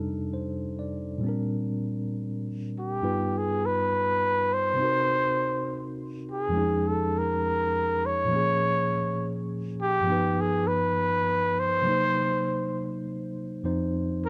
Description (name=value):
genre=jazz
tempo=68 BPM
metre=4/4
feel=swing 67% on 8ths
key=unclear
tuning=A4 = 439 Hz
part: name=bright tine electric piano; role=accompaniment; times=0.0-14.3 s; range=F2 to D5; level=-31 LUFS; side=equal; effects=none
part: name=breathy trumpet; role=melody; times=2.8-14.3 s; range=G4 to C#5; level=-28 LUFS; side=equal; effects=none
room=light reverb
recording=close, detailed microphones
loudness=-27 LUFS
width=mono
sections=0.0-14.3 A section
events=trumpet solo 0.0-14.3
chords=0.0 F13; 1.2 Bb69; 3.0 Gaug7; 4.8 Cm7b5; 6.5 Fm7b13; 8.3 Bbm7; 10.1 Gaug7; 11.8 Cm7b5; 13.6 F5